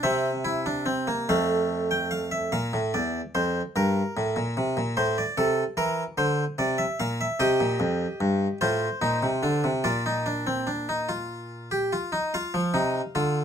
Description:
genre	classical, baroque-style 3-part fugue for harpsichord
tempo	49 BPM (dotted quarters)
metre	6/8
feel	straight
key	Bb major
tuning	A4 = 440 Hz
part	harpsichord	solo	0.0-13.4 s	E2 to G5	-24 LUFS	equal	none
room	light reverb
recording	close, detailed microphones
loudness	-24 LUFS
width	side -8 dB against mid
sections	0.0-2.5 A section; 2.5-12.3 B section; 12.3-13.4 A section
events	none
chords	0.0 C7; 1.3 F; 2.5 Bb; 3.8 Gmadd9; 5.0 Am; 6.2 Dm7; 7.4 Cm7; 8.6 F7/A; 9.8 Bb; 12.3 Cmadd11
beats	| 0.04 1.28 | 2.52 3.75 | 4.97 6.17 | 7.39 8.61 | 9.85 11.09 | 12.34

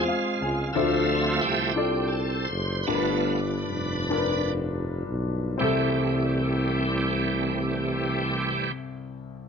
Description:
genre	slow gospel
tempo	36-60 BPM (dotted quarters)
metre	6/8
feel	straight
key	C major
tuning	A4 = 440 Hz
part	warm grand piano	accompaniment	0.0-9.5 s	C2 to Ab5	-28 LUFS	left 4 dB	none
part	bright tonewheel organ	sustained chords	0.0-8.7 s	E3 to E5	-27 LUFS	right 4 dB	fast rotary speaker, overdrive, chorus vibrato
part	warm tuba	bass	0.0-8.7 s	F1 to E2	-28 LUFS	equal	none
room	light reverb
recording	none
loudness	-23 LUFS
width	side -6 dB against mid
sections	0.0-5.6 A section; 5.6-9.5 B section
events	grand piano fill 0.0-0.8; tonewheel organ solo 0.0-5.6; slowing down 0.8-5.6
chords	0.0 Fm; 0.8 Dm7; 2.9 G7; 5.6 C6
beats	| 0.75 1.78 | 2.87 4.12 | 5.60 7.27 | 8.93

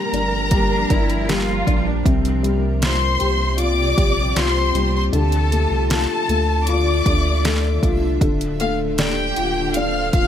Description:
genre	pop ballad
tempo	78 BPM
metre	4/4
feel	straight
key	unclear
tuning	A4 = 441 Hz
part	warm studio violin section	melody	0.0-10.3 s	G4 to F6	-22 LUFS	left 1 dB	none
part	dark upright piano	accompaniment	0.0-10.3 s	C3 to G4	-23 LUFS	left 5 dB	none
part	granular cloud pad	sustained chords	0.0-10.3 s	C3 to E5	-27 LUFS	right 2 dB	built-in reverb
part	warm sub bass	bass	0.1-10.3 s	D1 to D2	-22 LUFS	right 1 dB	none
part	deep house drum kit	drums	0.1-10.3 s	hi-hat, kick drum, snare drum	-20 LUFS	right 1 dB	none
part	rich studio cello section	second line	0.5-2.6 s	C4 to F4	-27 LUFS	right 1 dB	none
room	small room ambience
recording	none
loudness	-16 LUFS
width	side -9 dB against mid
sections	0.0-10.3 A section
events	none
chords	0.0 Gm7; 2.1 Csus4; 5.1 Dmadd9; 8.2 Dm11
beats	0.52 1.28 | 2.05 2.82 3.59 4.36 | 5.13 5.90 6.67 7.44 | 8.21 8.98 9.75

